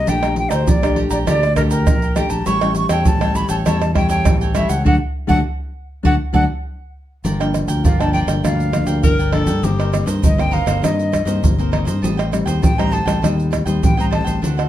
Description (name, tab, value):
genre	samba and choro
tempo	100 BPM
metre	4/4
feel	straight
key	G minor from 7.2 s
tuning	A4 = 440 Hz
part	breathy silver concert flute	melody	0.0-14.4 s	Bb4 to C#6	-22 LUFS	equal	plate reverb
part	cavaquinho	accompaniment	0.0-14.7 s	D4 to Bb5	-28 LUFS	right 3 dB	none
part	nylon-string guitar	accompaniment	0.0-14.7 s	G2 to G4	-22 LUFS	left 2 dB	none
part	fingered electric bass	bass	0.0-14.7 s	G1 to G2	-20 LUFS	equal	none
part	tube shaker, surdo, pandeiro and tamborim	percussion	0.1-14.7 s	none	-19 LUFS	right 1 dB	none
part	clear tenor saxophone	second line	9.0-10.1 s	G4 to Bb4	-22 LUFS	left 3 dB	none
room	moderate studio reverb, RT60 0.7 s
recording	dark, warm production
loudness	-15 LUFS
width	side -12 dB against mid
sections	0.0-7.2 A section; 7.2-14.7 B section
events	band accent 4.9-7.2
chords	0.1 Gmadd9/Bb; 2.5 A7; 4.9 D; 7.2 Gm7; 9.6 Cm7/G; 12.0 Am7b5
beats	| 0.08 0.68 1.28 1.87 | 2.47 3.07 3.66 4.26 | 4.86 5.45 6.05 6.65 | 7.24 7.84 8.44 9.04 | 9.64 10.23 10.83 11.43 | 12.03 12.63 13.23 13.83 | 14.43